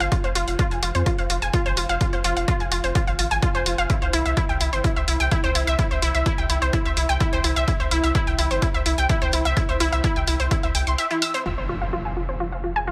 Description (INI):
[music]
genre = melodic techno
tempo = 127 BPM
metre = 4/4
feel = straight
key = F harmonic minor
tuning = A4 = 439 Hz
[part]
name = unison pluck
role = arpeggios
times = 0.0-12.9 s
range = E4 to E6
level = -26 LUFS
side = equal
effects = subtle chorus, sidechain pumping, dub echo
[part]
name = round analog bass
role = bass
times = 0.0-12.9 s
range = F1 to F2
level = -28 LUFS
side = equal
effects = sidechain pumping
[part]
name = electronic hi-hat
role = drums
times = 0.0-11.4 s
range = none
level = -31 LUFS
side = equal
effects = low-pass filter on hats, low-pass filter on cymbals, low-pass filter on room
[part]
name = electronic kick drum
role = drums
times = 0.1-10.6 s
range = none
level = -26 LUFS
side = equal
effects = none
[part]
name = impact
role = sound effects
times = 11.5-12.9 s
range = none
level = -34 LUFS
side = equal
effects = none
[sound]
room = light reverb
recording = none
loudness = -22 LUFS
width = mono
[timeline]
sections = 0.0-11.5 A section; 11.5-12.9 B section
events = impact 11.5-12.9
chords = 0.0 Fm; 3.9 C; 11.5 Fm